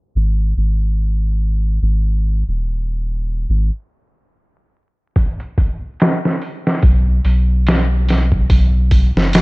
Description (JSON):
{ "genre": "trip hop", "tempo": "72 BPM", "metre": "4/4", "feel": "swing 57% on 16ths", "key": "G# minor", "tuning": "A4 = 440 Hz", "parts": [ { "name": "soft dub sub bass", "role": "bass", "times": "0.2-9.4 s", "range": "D#1 to B1", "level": "-15 LUFS", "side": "equal", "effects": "none" }, { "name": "trip hop sampler-style drum kit", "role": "drums", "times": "5.2-9.4 s", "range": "hi-hat, kick drum, snare drum", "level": "-15 LUFS", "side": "equal", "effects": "studio reverb" } ], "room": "digital ambience", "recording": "vinyl crackle, low-pass filter", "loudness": "-14 LUFS", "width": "side -25 dB against mid", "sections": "0.0-9.4 A section", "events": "filter sweep 0.0-9.4", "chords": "none", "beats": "0.16 0.99 | 1.83 2.66 3.49 4.33 | 5.16 5.99 6.83 7.66 | 8.49 9.33" }